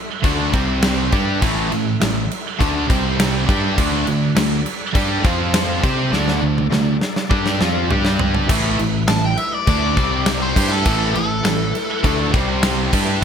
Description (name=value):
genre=hard rock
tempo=102 BPM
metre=4/4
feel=straight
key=A minor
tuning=A4 = 438 Hz
part: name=bright tonewheel organ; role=sustained chords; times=0.0-13.2 s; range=A3 to D6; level=-31 LUFS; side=equal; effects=none
part: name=cranked stack guitar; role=riff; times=0.2-13.2 s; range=A2 to C5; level=-25 LUFS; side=left 13 dB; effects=overdrive
part: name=heavy high-gain guitar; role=riff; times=0.2-13.2 s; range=A2 to C5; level=-25 LUFS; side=equal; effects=distortion
part: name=sludgy distorted guitar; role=riff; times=0.2-13.2 s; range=A2 to C5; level=-23 LUFS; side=right 11 dB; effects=overdrive
part: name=modern bright picked electric bass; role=bass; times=0.2-13.2 s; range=A1 to C3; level=-22 LUFS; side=equal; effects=none
part: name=huge arena drum kit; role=drums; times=0.2-13.1 s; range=crash cymbal, kick drum, snare drum, toms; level=-20 LUFS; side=equal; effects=none
part: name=nasal lead guitar with a parked wah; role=melody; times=9.1-12.3 s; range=A4 to A5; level=-23 LUFS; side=left 2 dB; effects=overdrive
room=light reverb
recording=none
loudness=-16 LUFS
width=side -7 dB against mid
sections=0.0-8.5 A section; 8.5-13.2 B section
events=drum fill 6.1-8.5; lead electric guitar solo 8.5-13.2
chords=0.0 Am; 0.5 C5; 1.1 Am; 2.9 C5; 3.5 Am; 3.8 D5; 5.2 F5; 5.8 D5; 7.9 G5; 8.5 A5; 10.0 C5; 10.6 A5; 12.3 C5